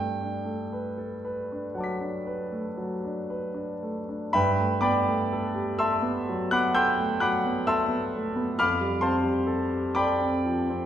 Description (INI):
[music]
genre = classical, impressionist solo piano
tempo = 36-46 BPM (dotted quarters)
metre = 9/8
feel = rubato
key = G major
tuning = A4 = 441 Hz
[part]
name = clear concert grand piano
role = solo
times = 0.0-10.9 s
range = F2 to B6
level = -24 LUFS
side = equal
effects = none
[sound]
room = wet recital hall reverb, RT60 1.5 s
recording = heard from further back in the room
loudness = -24 LUFS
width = side -10 dB against mid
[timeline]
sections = 0.0-4.4 A section; 4.4-10.9 A section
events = none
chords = 0.0 Gmaj9; 8.6 F69